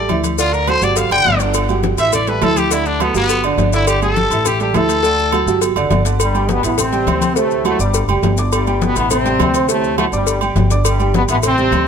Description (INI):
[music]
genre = latin, salsa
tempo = 206 BPM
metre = 4/4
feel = straight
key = G major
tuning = A4 = 440 Hz
[part]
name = growling trumpet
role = melody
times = 0.0-5.6 s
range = B3 to G5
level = -17 LUFS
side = left 2 dB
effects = none
[part]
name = clear upright piano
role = accompaniment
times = 0.0-11.8 s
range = C3 to D6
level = -20 LUFS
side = right 5 dB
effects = none
[part]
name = upright bass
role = bass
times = 0.0-11.9 s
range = F#1 to D2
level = -19 LUFS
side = equal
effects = none
[part]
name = congas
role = percussion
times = 0.1-11.9 s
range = none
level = -24 LUFS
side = left 6 dB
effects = none
[part]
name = cowbell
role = percussion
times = 0.1-11.9 s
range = none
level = -26 LUFS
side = left 6 dB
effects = none
[part]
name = maracas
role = percussion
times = 0.1-11.9 s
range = none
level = -25 LUFS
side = left 10 dB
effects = none
[part]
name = timbales and agogo bells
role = percussion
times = 0.1-11.9 s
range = none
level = -23 LUFS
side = right 7 dB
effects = none
[part]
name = bright trombone section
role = melody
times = 6.2-11.9 s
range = G2 to C4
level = -18 LUFS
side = left 2 dB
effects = none
[sound]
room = light reverb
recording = none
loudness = -13 LUFS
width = side -7 dB against mid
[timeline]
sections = 0.0-6.2 A section; 6.2-11.9 B section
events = trumpet solo 0.0-6.2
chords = 0.4 D; 1.0 G5; 2.1 A5; 2.7 D; 3.3 G5; 4.5 A5; 5.0 D; 5.6 G5; 6.2 G; 6.8 Am7; 7.4 D7; 7.9 G; 9.1 Am7; 9.7 D7; 10.3 G